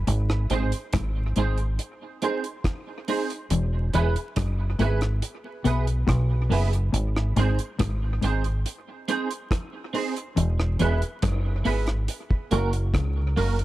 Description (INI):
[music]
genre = roots reggae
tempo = 70 BPM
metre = 4/4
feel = straight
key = unclear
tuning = A4 = 440 Hz
[part]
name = deep dub fingered electric bass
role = bass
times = 0.0-13.6 s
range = E1 to Db2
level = -24 LUFS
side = equal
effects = none
[part]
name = mellow electric guitar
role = riff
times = 0.1-13.6 s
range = E2 to Db3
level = -28 LUFS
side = left 2 dB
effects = ensemble chorus
[part]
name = deep reggae drum kit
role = drums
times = 0.1-13.6 s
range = hi-hat, kick drum, rim click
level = -30 LUFS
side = equal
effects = dub echo
[part]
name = clean electric guitar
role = accompaniment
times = 0.5-13.6 s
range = Bb3 to C5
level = -29 LUFS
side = right 4 dB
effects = ensemble chorus, tape echo
[sound]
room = light reverb, small room ambience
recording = vinyl crackle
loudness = -23 LUFS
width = side -16 dB against mid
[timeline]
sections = 0.0-13.6 A section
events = none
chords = 0.1 Ab; 3.5 E; 6.9 Ab; 10.4 E; 12.1 Gb